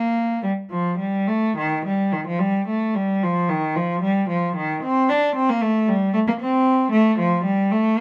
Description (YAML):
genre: classical, baroque-style suite movement for unaccompanied cello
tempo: 67-78 BPM (dotted quarters)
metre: 12/8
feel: rubato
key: unclear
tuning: A4 = 440 Hz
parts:
  - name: rich cello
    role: solo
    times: 0.0-8.0 s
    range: Eb3 to D4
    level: -21 LUFS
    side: equal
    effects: none
room: light reverb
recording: none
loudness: -21 LUFS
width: mono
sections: 0.0-8.0 A section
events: none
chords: none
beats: 0.71 | 1.57 2.40 3.23 4.03 | 4.83 5.63 6.41 7.19 | 7.98